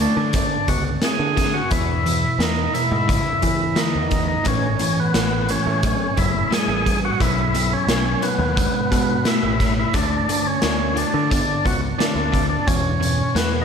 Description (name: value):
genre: classic rock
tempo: 88 BPM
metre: 4/4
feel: straight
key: unclear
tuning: A4 = 440 Hz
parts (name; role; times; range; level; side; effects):
- overdriven tonewheel organ; melody; 0.0-13.6 s; B3 to G#4; -22 LUFS; right 1 dB; slow rotary speaker
- overdriven semi-hollow guitar; riff; 0.0-13.6 s; E2 to C4; -24 LUFS; equal; none
- picked electric bass; bass; 0.0-13.6 s; F#1 to E3; -24 LUFS; equal; none
- raw garage drum kit; drums; 0.0-13.5 s; hi-hat, kick drum, snare drum; -22 LUFS; left 1 dB; none
room: moderate lush hall reverb, RT60 2.3 s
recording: big arena sound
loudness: -17 LUFS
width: side -7 dB against mid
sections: 0.0-13.6 A section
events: none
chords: 0.0 D5; 1.7 E5; 4.5 A5; 7.2 B5; 9.9 D5; 12.7 E5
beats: 0.34 1.03 | 1.72 2.41 3.10 3.78 | 4.47 5.15 5.84 6.52 | 7.21 7.89 8.57 9.26 | 9.94 10.62 11.31 11.99 | 12.67 13.36